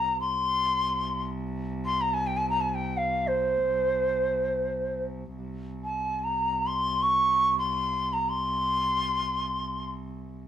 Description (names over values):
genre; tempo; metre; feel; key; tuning
Turkish makam ensemble; free time; none; none; C makam hicaz; A4 = 436 Hz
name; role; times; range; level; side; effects
breathy bright ney; melody; 0.0-9.9 s; C5 to Db6; -25 LUFS; equal; none
dark cello; drone; 0.0-10.5 s; C2; -34 LUFS; right 1 dB; none
room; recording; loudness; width
moderate large studio reverb, RT60 0.9 s; band playing live in one room; -25 LUFS; side -10 dB against mid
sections
0.0-5.4 A section; 5.4-10.5 A section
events
none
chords
none